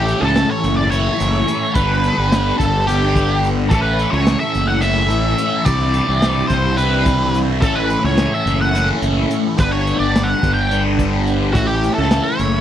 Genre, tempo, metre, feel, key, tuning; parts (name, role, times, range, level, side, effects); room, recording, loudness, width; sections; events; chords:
psychedelic rock; 214 BPM (eighths); 7/8; straight; A mixolydian; A4 = 440 Hz
octave-fuzz lead guitar; melody; 0.0-12.6 s; F#4 to G5; -20 LUFS; equal; wah, distortion, slapback echo
tonewheel organ; sustained chords; 0.0-12.6 s; C#4 to C#6; -30 LUFS; right 3 dB; slow rotary speaker, overdrive, chorus vibrato
overdriven electric guitar; riff; 0.0-12.6 s; G2 to E4; -19 LUFS; left 1 dB; phaser
fuzz fingered electric bass; bass; 0.0-12.6 s; F#1 to C#2; -19 LUFS; equal; overdrive
crunchy breakbeat drum kit; drums; 0.1-12.5 s; hi-hat, kick drum, snare drum; -20 LUFS; equal
small room ambience; dry, close 1970s-style studio recording; -14 LUFS; side -10 dB against mid
0.0-12.6 A section
0.0 A; 1.8 G; 3.7 A; 5.7 Cadd9; 7.6 A; 9.6 G; 11.5 A